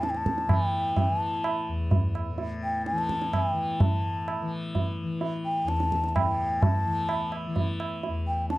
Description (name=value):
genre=indian classical, Hindustani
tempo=128 BPM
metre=3/4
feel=straight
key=unclear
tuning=A4 = 440 Hz
part: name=breathy mellow bansuri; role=melody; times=0.0-8.6 s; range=G5 to A5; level=-28 LUFS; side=left 1 dB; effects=none
part: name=tanpura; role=drone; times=0.0-8.6 s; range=E2 to E3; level=-32 LUFS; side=left 2 dB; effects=none
part: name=tabla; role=percussion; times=0.0-8.6 s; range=none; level=-27 LUFS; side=right 2 dB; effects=none
room=light reverb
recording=dry, close 1970s-style studio recording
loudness=-25 LUFS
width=side -17 dB against mid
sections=0.0-3.8 A section; 3.8-8.6 B section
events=none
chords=none